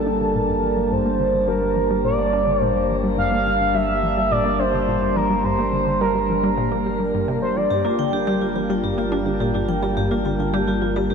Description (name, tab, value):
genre	ambient, sequencer-driven space music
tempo	106 BPM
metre	4/4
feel	straight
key	G minor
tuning	A4 = 440 Hz
part	expressive synth lead	melody	0.0-8.3 s	A4 to F5	-22 LUFS	right 1 dB	analog chorus, shimmer reverb, ping-pong delay
part	sweeping resonant pad	sustained chords	0.0-11.1 s	G3 to A5	-24 LUFS	equal	chorus, shimmer reverb
part	analog pluck	riff	0.0-11.1 s	G2 to D4	-26 LUFS	equal	chorus, shimmer reverb, ping-pong delay
part	warm sub bass	bass	0.0-11.1 s	G1	-29 LUFS	equal	none
part	vibraphone with medium mallets	arpeggios	7.7-11.1 s	F4 to G5	-25 LUFS	right 2 dB	auto-pan, shimmer reverb, ping-pong delay
room	wet lush hall reverb, RT60 2.8 s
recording	dreamy mix soaked in reverb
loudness	-18 LUFS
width	side -6 dB against mid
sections	0.0-11.1 A section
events	filter sweep on synth arpeggio sound 0.0-11.1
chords	0.0 Gm